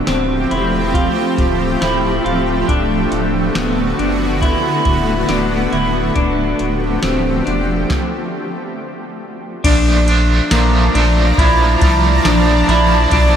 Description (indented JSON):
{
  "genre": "dream pop",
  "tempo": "69 BPM",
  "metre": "4/4",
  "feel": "straight",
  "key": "unclear",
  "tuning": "A4 = 441 Hz",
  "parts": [
    { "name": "shimmering ambient pad", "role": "sustained chords", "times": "0.0-13.4 s", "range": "D3 to Bb5", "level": "-18 LUFS", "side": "right 1 dB", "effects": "chorus, built-in reverb" },
    { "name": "clean electric guitar", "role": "arpeggios", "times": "0.0-13.4 s", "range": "Bb3 to F4", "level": "-18 LUFS", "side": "left 1 dB", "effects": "wide subtle chorus, diffuse ambient delay" },
    { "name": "saturated sub bass", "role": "bass", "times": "0.1-13.4 s", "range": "D1 to C2", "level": "-18 LUFS", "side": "equal", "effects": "none" },
    { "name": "soft vintage rhythm box", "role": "drums", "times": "0.1-13.3 s", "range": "crash cymbal, hi-hat, kick drum, ride cymbal, snare drum, tambourine", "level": "-19 LUFS", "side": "equal", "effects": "none" },
    { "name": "cranked stack guitar", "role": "accompaniment", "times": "9.6-13.4 s", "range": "Bb2 to D4", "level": "-19 LUFS", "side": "right 4 dB", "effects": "overdrive, tremolo, lush chorus" }
  ],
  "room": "wet cathedral reverb, RT60 5.0 s",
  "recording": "dreamy mix soaked in reverb",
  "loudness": "-13 LUFS",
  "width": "side -8 dB against mid",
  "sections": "0.0-9.6 A section; 9.6-13.4 B section",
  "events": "stop 7.9-9.6",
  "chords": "0.0 Fadd9/D; 2.7 D6; 6.2 Fadd9/D; 7.9 N.C.; 9.6 Bbmaj7"
}